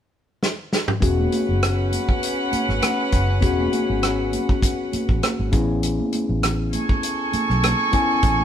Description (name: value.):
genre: lush 1970s-style soul.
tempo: 100 BPM.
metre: 4/4.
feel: swing 54% on 16ths.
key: E major.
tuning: A4 = 441 Hz.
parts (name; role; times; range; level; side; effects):
warm soul drum kit; drums; 0.4-8.4 s; hi-hat, kick drum, rim click, snare drum, toms; -22 LUFS; right 1 dB; none.
rich studio violin section; second line; 1.0-8.4 s; C#4 to C#6; -24 LUFS; right 1 dB; none.
mellow tine electric piano; accompaniment; 1.0-8.4 s; B3 to G#5; -24 LUFS; left 4 dB; none.
vintage muted fingered electric bass; bass; 1.0-8.4 s; E1 to B1; -23 LUFS; equal; none.
congas; percussion; 1.0-8.4 s; none; -30 LUFS; right 5 dB; none.
room: light reverb.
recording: band playing live in one room.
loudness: -18 LUFS.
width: side -9 dB against mid.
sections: 0.0-1.0 A section; 1.0-8.4 B section.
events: drum fill 0.4-1.0.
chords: 0.0 N.C.; 1.0 E69 (rootless); 5.5 Amaj7.